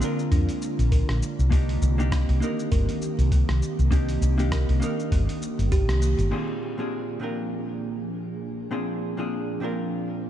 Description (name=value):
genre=sunset chillout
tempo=100 BPM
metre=4/4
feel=swing 57% on 16ths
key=unclear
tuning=A4 = 437 Hz
part: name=vintage hollow-body jazz guitar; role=accompaniment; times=0.0-10.3 s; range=Bb2 to Bb4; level=-30 LUFS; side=equal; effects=auto-pan, ping-pong delay, shimmer reverb
part: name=ethereal airy pad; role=sustained chords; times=0.0-10.3 s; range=D3 to Ab4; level=-31 LUFS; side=right 1 dB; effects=ensemble chorus, built-in reverb, shimmer reverb
part: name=dusty soul sampler-style drum kit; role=drums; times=0.0-6.5 s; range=cabasa, crash cymbal, hi-hat, rim click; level=-37 LUFS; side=equal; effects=overdrive, low-pass filter on hats, studio reverb, low-pass filter on perc, low-pass filter on snare, low-pass filter on cymbals
part: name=kalimba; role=arpeggios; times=0.3-6.3 s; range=Bb3 to Bb4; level=-36 LUFS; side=right 3 dB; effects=ping-pong delay, shimmer reverb
part: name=woody fretless electric bass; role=bass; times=0.3-6.3 s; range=G1 to F2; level=-22 LUFS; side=equal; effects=none
part: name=electronic kick drum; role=drums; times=0.3-5.9 s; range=none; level=-24 LUFS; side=equal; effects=studio reverb
room=light reverb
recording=dark, warm production, nothing above 10.8 kHz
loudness=-22 LUFS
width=side -11 dB against mid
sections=0.0-6.3 A section; 6.3-10.3 B section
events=band accent 5.9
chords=0.0 Bb7; 1.5 Cm7; 6.3 Bb7